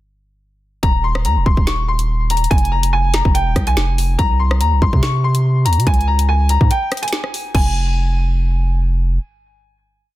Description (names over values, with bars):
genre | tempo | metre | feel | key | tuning
hip hop, drill | 143 BPM | 4/4 | half-time | F minor | A4 = 439 Hz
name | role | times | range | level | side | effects
bright upright piano | melody | 0.8-8.8 s | G5 to Db6 | -21 LUFS | left 2 dB | low-pass filter, ping-pong delay
long sustained 808-style bass | bass | 0.8-9.2 s | Eb1 to C3 | -16 LUFS | equal | none
drill drum kit | drums | 0.8-7.6 s | crash cymbal, hi-hat, kick drum, rim click, snare drum | -18 LUFS | equal | none
room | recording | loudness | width
digital ambience | dense, heavily limited modern master, faint mains hum | -14 LUFS | side -16 dB against mid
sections
0.8-7.5 hook; 7.5-10.2 final chord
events
break 6.7-7.5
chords
0.8 Cm7/Eb; 2.5 Fm; 4.2 Cm7; 5.9 Db5; 7.5 Fm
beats
| 0.83 1.25 1.67 2.09 | 2.51 2.93 3.35 3.77 | 4.19 4.61 5.03 5.45 | 5.87 6.29 6.71 7.13 | 7.54 7.96 8.38 8.80